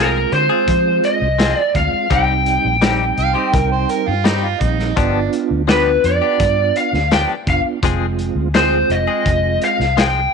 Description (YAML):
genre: straight-eighth soul blues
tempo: 84 BPM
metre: 4/4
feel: straight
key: C minor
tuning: A4 = 440 Hz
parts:
  - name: lead guitar through a small cranked amp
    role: melody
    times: 0.0-10.3 s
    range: Bb4 to G5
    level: -17 LUFS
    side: left 1 dB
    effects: overdrive
  - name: mellow tonewheel organ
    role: accompaniment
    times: 0.0-9.9 s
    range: G3 to F4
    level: -23 LUFS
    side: right 12 dB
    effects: slow rotary speaker, chorus vibrato
  - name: direct-recorded clean electric guitar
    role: stabs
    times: 0.0-10.2 s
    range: F3 to Ab4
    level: -24 LUFS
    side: left 13 dB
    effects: tremolo
  - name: vintage muted fingered electric bass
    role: bass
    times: 0.0-10.3 s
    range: F1 to F3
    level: -20 LUFS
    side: left 1 dB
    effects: none
  - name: crunchy breakbeat drum kit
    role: drums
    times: 0.3-10.1 s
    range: hi-hat, kick drum, snare drum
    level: -20 LUFS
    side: left 1 dB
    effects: none
  - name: overdriven harmonica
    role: second line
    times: 3.2-5.3 s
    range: D4 to F5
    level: -23 LUFS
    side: right 11 dB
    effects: none
room: light reverb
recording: 1960s-style stereo with parts hard left and right, nothing above 10.4 kHz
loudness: -14 LUFS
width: side -5 dB against mid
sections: 0.0-10.3 A section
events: none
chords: 0.0 Fm; 2.1 Cm; 5.0 G7; 7.8 Fm